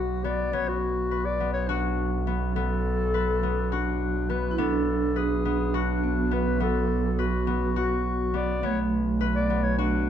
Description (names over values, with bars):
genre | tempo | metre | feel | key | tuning
contemporary instrumental, contemporary | 207 BPM (eighths) | 7/8 | straight | B minor | A4 = 440 Hz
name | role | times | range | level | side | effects
breathy clarinet | melody | 0.0-10.1 s | D4 to D5 | -29 LUFS | left 3 dB | none
concert harp | arpeggios | 0.0-10.1 s | B3 to B4 | -30 LUFS | left 10 dB | none
rich double bass | bass | 0.0-10.1 s | B1 | -28 LUFS | right 3 dB | none
vibraphone with soft mallets | second line | 4.5-10.1 s | A3 to E4 | -29 LUFS | right 5 dB | none
room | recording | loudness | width
light reverb | dark, warm production | -24 LUFS | side -9 dB against mid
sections
0.0-10.1 A section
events
none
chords
0.0 Bm7